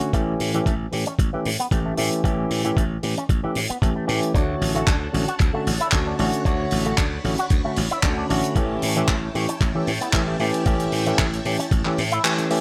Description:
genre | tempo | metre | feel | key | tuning
nu-disco, nu disco | 114 BPM | 4/4 | swing 54% on 16ths | unclear | A4 = 440 Hz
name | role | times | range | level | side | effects
barky tine electric piano | accompaniment | 0.0-12.6 s | D3 to C#5 | -27 LUFS | equal | digital delay
damped 70s drum kit | drums | 0.0-12.6 s | handclaps, hi-hat | -30 LUFS | equal | studio reverb
electric guitar with an envelope filter | riff | 0.1-12.6 s | E3 to F#4 | -31 LUFS | equal | analog chorus, digital delay
slap bass | bass | 0.1-12.2 s | A1 to A2 | -28 LUFS | equal | none
electronic kick drum | drums | 0.1-11.8 s | none | -24 LUFS | equal | studio reverb
string machine, full ensemble | sustained chords | 4.4-12.6 s | D4 to B5 | -35 LUFS | equal | phaser, ensemble chorus, vintage 12-bit sampler grit, sidechain pumping
room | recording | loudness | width
light reverb, small room ambience | none | -22 LUFS | mono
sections
0.0-12.6 A section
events
band accent 12.2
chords
0.1 A7; 4.3 Dmaj7; 8.6 A7

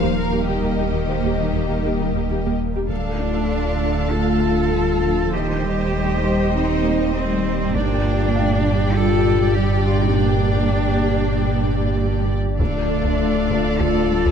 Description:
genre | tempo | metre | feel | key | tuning
cinematic, hybrid orchestral and electronic film score | 99 BPM | 4/4 | straight | D phrygian | A4 = 440 Hz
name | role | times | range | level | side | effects
warm symphonic violin section | melody | 0.0-14.3 s | Eb5 to A5 | -32 LUFS | left 7 dB | none
warm symphonic violin section | second line | 0.0-14.3 s | G4 to F5 | -31 LUFS | left 4 dB | none
warm symphonic viola section | accompaniment | 0.0-14.3 s | G3 to C5 | -29 LUFS | equal | none
dark trombone section | sustained chords | 0.0-2.6 s | G3 to Bb3 | -28 LUFS | right 4 dB | none
hollow soft pad | sustained chords | 0.0-14.3 s | Bb2 to D5 | -26 LUFS | left 1 dB | ensemble chorus
mellow French horn section | sustained chords | 0.0-14.3 s | Bb2 to F4 | -26 LUFS | left 7 dB | none
clear symphonic double bass section | bass | 0.0-14.3 s | D2 to G2 | -24 LUFS | right 4 dB | none
rich symphonic cello section | bass | 0.0-14.3 s | Eb3 to C4 | -26 LUFS | right 3 dB | none
sub bass with octave | bass | 0.0-14.3 s | D1 to G1 | -26 LUFS | equal | none
felt-muted upright piano | texture | 0.0-14.3 s | D4 to C6 | -38 LUFS | left 1 dB | none
rich cello | melody | 2.9-14.3 s | C4 to A4 | -26 LUFS | right 3 dB | none
taiko ensemble | drums | 2.9-4.1, 7.7-8.9, 12.6-14.3 s | none | -26 LUFS | equal | none
room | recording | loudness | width
moderate scoring stage reverb, RT60 1.9 s | dark, warm production | -17 LUFS | side -7 dB against mid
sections
0.0-2.9 A section; 2.9-14.3 B section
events
none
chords
0.0 Eb; 2.9 Dm; 5.3 Cm/Eb; 7.7 Gm; 12.6 Dm

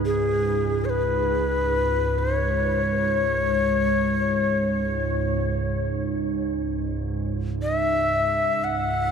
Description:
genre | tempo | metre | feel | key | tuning
world meditative, free-time meditation music | free time | none | none | C# minor pentatonic | A4 = 436 Hz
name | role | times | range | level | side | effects
warbly tape-like pad | drone | 0.0-9.1 s | C#2 to G#2 | -25 LUFS | right 2 dB | chorus, built-in reverb
tubular bells | texture | 0.0-2.9 s | none | barely audible | none | none
breathy Native American-style cedar flute | melody | 0.1-9.1 s | G#4 to F#5 | -23 LUFS | left 3 dB | ping-pong delay
room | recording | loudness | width
wet huge ambient reverb, RT60 7.7 s | dark, warm production | -21 LUFS | side -6 dB against mid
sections
0.0-9.1 A section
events
none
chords
none

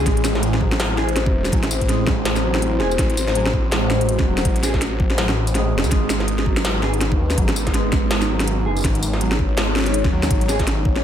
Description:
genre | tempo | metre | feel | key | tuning
half-time drum and bass | 164 BPM | 4/4 | swing 58% on 16ths, half-time | unclear | A4 = 439 Hz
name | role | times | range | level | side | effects
dark analog pad | sustained chords | 0.0-11.0 s | G#3 to C#5 | -26 LUFS | left 3 dB | chorus, phaser, sidechain pumping
mellow electric guitar | arpeggios | 0.0-10.6 s | F#3 to G#4 | -25 LUFS | right 2 dB | lush chorus, analog delay
phased detuned saw bass | bass | 0.0-11.0 s | E1 to D#2 | -22 LUFS | equal | phaser
electronic kick drum | drums | 0.1-10.9 s | none | -21 LUFS | equal | overdrive
industrial drum kit | drums | 0.1-11.0 s | hi-hat, snare drum, tambourine | -23 LUFS | equal | none
room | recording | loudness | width
light reverb | none | -17 LUFS | side -10 dB against mid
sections
0.0-11.0 A section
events
none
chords
0.1 Am; 5.9 G#m

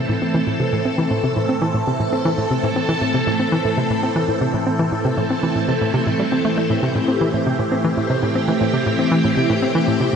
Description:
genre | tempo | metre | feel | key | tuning
ambient, sequencer-driven space music | 118 BPM | 4/4 | straight | A minor | A4 = 442 Hz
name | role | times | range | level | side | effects
phased string machine | sustained chords | 0.0-10.2 s | A2 to A4 | -19 LUFS | equal | ensemble chorus, phaser
hollow square pluck | riff | 0.0-10.2 s | A2 to C4 | -20 LUFS | equal | chorus, ping-pong delay
pulsing gated texture | texture | 1.0-10.2 s | E5 | -36 LUFS | right 1 dB | none
room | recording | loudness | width
wet lush hall reverb, RT60 2.6 s | none | -17 LUFS | side -7 dB against mid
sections
0.0-10.2 A section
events
none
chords
0.0 Am

